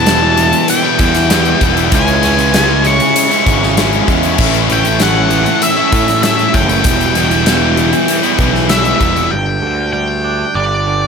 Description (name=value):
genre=quiet-loud alternative rock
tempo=97 BPM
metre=4/4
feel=straight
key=E dorian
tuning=A4 = 440 Hz
part: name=octave-fuzz lead guitar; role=melody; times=0.0-11.1 s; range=D5 to C#6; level=-16 LUFS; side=left 2 dB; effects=distortion
part: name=crunchy overdriven guitar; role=riff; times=0.0-9.3 s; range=A2 to E4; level=-17 LUFS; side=right 15 dB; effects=phaser
part: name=distorted electric guitar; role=riff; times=0.0-9.3 s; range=E2 to C#4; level=-20 LUFS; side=right 1 dB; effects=distortion
part: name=tight distorted guitar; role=riff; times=0.0-9.3 s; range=A2 to E4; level=-17 LUFS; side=left 16 dB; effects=distortion
part: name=fuzz picked electric bass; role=bass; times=0.0-11.1 s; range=E1 to A2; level=-17 LUFS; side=equal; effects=overdrive
part: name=huge arena drum kit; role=drums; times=0.1-9.3 s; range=crash cymbal, hi-hat, kick drum, snare drum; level=-16 LUFS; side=equal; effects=none
part: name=twangy electric guitar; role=arpeggios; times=9.3-11.1 s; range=G2 to D4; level=-20 LUFS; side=right 11 dB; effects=none
room=light reverb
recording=none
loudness=-10 LUFS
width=side -6 dB against mid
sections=0.0-9.3 A section; 9.3-11.1 B section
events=half time 9.3-11.1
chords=0.0 Em; 1.9 C#m; 4.4 A; 6.9 Em; 9.3 G5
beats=0.08 0.69 1.31 | 1.93 2.54 3.16 3.77 | 4.39 5.00 5.62 6.24 | 6.85 7.47 8.09 8.70 | 9.32 9.94 10.56